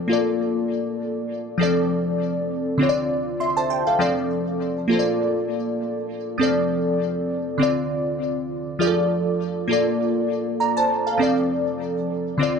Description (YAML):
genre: afrobeats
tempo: 100 BPM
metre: 4/4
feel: swing 55% on 16ths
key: F major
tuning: A4 = 439 Hz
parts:
  - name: glassy digital keys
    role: solo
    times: 0.0-12.6 s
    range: D3 to C6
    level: -20 LUFS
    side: equal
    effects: chorus, low-pass filter, ping-pong delay
room: wet small room reverb, RT60 0.6 s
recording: dark, warm production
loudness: -20 LUFS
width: side -6 dB against mid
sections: 0.0-1.6 A section; 1.6-12.6 B section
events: none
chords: 0.1 Bbmaj7; 1.6 F6; 2.8 Dm7; 4.0 F6; 4.9 Bbmaj7; 6.4 F6; 7.6 Dm7; 8.8 F6; 9.7 Bbmaj7; 11.2 F6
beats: 0.40 1.00 | 1.60 2.20 2.80 3.40 | 4.00 4.60 5.20 5.80 | 6.40 7.00 7.60 8.20 | 8.80 9.40 10.00 10.60 | 11.20 11.80 12.40